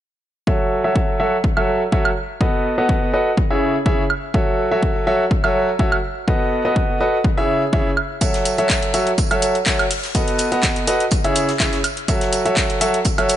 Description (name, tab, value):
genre	piano house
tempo	124 BPM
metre	4/4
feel	swing 53% on 16ths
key	F# dorian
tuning	A4 = 441 Hz
part	clear baby grand piano	riff	0.5-13.4 s	C#3 to E5	-18 LUFS	equal	sidechain pumping, low-pass filter, ping-pong delay
part	electronic kick drum	drums	0.5-13.2 s	none	-20 LUFS	equal	overdrive
part	punchy analog drum machine	drums	1.6-13.4 s	handclaps, hi-hat, woodblock	-22 LUFS	right 1 dB	none
part	huge arena drum kit	drums	8.2-13.4 s	hi-hat, snare drum, tambourine	-29 LUFS	right 3 dB	high-pass filter on hats, high-pass filter on snare, high-pass filter on perc, high-pass filter on room
room	light reverb, studio ambience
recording	nothing above 10.5 kHz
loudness	-16 LUFS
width	side -11 dB against mid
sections	0.5-13.4 A section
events	none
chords	0.5 F#m7; 2.4 B7; 3.4 C#m; 4.3 F#m7; 6.3 B7; 7.2 C#m; 8.2 F#m7; 10.1 B7; 11.1 C#m; 12.1 F#m7